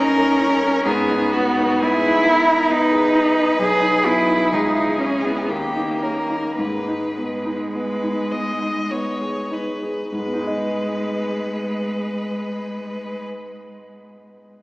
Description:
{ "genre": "classical, slow romantic movement for piano trio", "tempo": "48-69 BPM", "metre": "3/4", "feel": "rubato", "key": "G# minor", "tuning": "A4 = 441 Hz", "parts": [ { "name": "rich violin", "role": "melody", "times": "0.0-13.2 s", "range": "F#4 to D#5", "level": "-25 LUFS", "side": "left 1 dB", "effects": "none" }, { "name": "rich cello", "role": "second line", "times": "0.0-13.2 s", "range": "G#3 to G#4", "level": "-20 LUFS", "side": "right 1 dB", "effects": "none" }, { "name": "warm concert grand piano", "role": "accompaniment", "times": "0.0-14.6 s", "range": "B1 to D#5", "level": "-23 LUFS", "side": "equal", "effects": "none" } ], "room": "wet church reverb, RT60 3.8 s", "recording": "recorded in a church or concert hall, small speaker sound", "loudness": "-18 LUFS", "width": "side -21 dB against mid", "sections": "0.0-10.1 A section; 10.1-13.7 B section", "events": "slowing down 2.3-10.1", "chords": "0.0 D#7/G; 0.9 G#m; 3.6 G#m/B; 4.5 C#m; 5.5 D#7; 6.6 G#m", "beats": "| 0.87 1.83 2.72 | 3.60 4.54 5.51 | 6.59 7.73 8.90 | 10.12 11.32 12.51" }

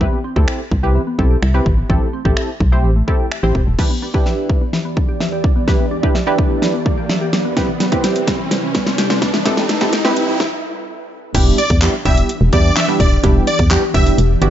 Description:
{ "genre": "dance-pop", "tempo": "127 BPM", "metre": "4/4", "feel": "straight", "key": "E minor", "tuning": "A4 = 440 Hz", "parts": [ { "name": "funky polysynth comp", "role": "accompaniment", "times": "0.0-14.5 s", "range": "G3 to C5", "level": "-20 LUFS", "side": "right 1 dB", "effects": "chorus, sidechain pumping" }, { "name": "glassy wavetable pluck", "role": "arpeggios", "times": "0.0-10.3 s", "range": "A2 to E5", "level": "-26 LUFS", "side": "left 2 dB", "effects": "chorus, sidechain pumping, ping-pong delay" }, { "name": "organ-like FM bass", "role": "bass", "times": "0.0-3.8, 11.3-14.5 s", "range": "D#1 to E2", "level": "-15 LUFS", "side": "equal", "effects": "sidechain pumping" }, { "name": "pop drum kit", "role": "drums", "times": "0.0-14.5 s", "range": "crash cymbal, finger snaps, handclaps, hi-hat, kick drum, snare drum", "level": "-17 LUFS", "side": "equal", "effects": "none" }, { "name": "ethereal airy pad", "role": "sustained chords", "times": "4.5-14.5 s", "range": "E2 to D5", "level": "-24 LUFS", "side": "right 1 dB", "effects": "ensemble chorus, built-in reverb, sidechain pumping" }, { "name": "riser", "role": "sound effects", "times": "5.6-10.4 s", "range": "none", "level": "-24 LUFS", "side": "right 1 dB", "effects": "none" }, { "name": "supersaw chords", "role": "melody", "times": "11.6-14.0 s", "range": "D5 to E5", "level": "-20 LUFS", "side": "equal", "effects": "none" } ], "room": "little or no reverb", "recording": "high-pass filter, nothing above 7.7 kHz", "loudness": "-13 LUFS", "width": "side -11 dB against mid", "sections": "0.0-3.8 A section; 3.8-11.3 B section; 11.3-14.5 C section", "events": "build-up 3.8-11.3; drum fill 3.8-10.4; filter sweep 3.8-11.3; riser 5.6-11.3; stop 10.4-11.3; drop 11.3-14.5", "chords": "0.0 Cmaj7; 1.9 Am7; 3.8 Em7; 7.6 Cmaj7; 9.5 Am7; 11.3 Em7", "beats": "| 0.01 0.48 0.95 1.43 | 1.90 2.37 2.84 3.31 | 3.79 4.26 4.73 5.20 | 5.68 6.15 6.62 7.09 | 7.57 8.04 8.51 8.98 | 9.46 9.93 10.40 10.87 | 11.35 11.82 12.29 12.76 | 13.24 13.71 14.18" }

